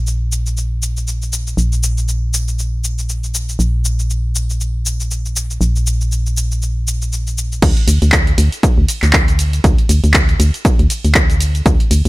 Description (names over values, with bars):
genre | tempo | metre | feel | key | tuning
deep house | 119 BPM | 4/4 | swing 57% on 16ths | unclear | A4 = 440 Hz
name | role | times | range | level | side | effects
organ-like FM bass | bass | 0.0-12.1 s | Bb1 to D2 | -15 LUFS | equal | sidechain pumping
punchy analog drum machine | drums | 0.1-12.1 s | crash cymbal, handclaps, hi-hat, ride cymbal, shaker | -19 LUFS | equal | none
electronic kick drum | drums | 7.6-11.8 s | none | -13 LUFS | equal | none
room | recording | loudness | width
little or no reverb | none | -13 LUFS | side -20 dB against mid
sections
0.0-7.6 A section; 7.6-12.1 B section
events
drop 7.6-12.1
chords
none